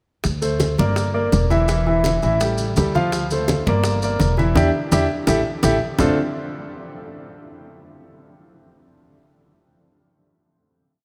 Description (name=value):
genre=latin, salsa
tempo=167 BPM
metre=4/4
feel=straight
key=D minor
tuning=A4 = 440 Hz
part: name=upright bass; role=bass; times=0.2-6.2 s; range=E1 to E2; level=-24 LUFS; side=equal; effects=none
part: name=bongos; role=percussion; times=0.2-6.1 s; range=none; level=-30 LUFS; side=equal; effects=none
part: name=maracas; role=percussion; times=0.2-6.1 s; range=none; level=-35 LUFS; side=equal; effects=none
part: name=congas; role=percussion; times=0.3-6.1 s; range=none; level=-28 LUFS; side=equal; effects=none
part: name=clear baby grand piano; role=accompaniment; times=0.4-6.2 s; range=D3 to F5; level=-23 LUFS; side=equal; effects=none
room=wet cathedral reverb, RT60 5.2 s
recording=in a vast, echoing space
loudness=-19 LUFS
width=mono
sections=0.3-6.0 montuno (vamp); 6.0-7.4 final chord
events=drum fill 4.6-6.0; band accent 4.6-6.0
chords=0.3 D5; 1.0 Gm; 1.7 Esus4; 2.4 Dmadd11/A; 3.1 Dm7; 3.8 Gm; 4.6 Em7; 5.3 A5; 6.0 Dm7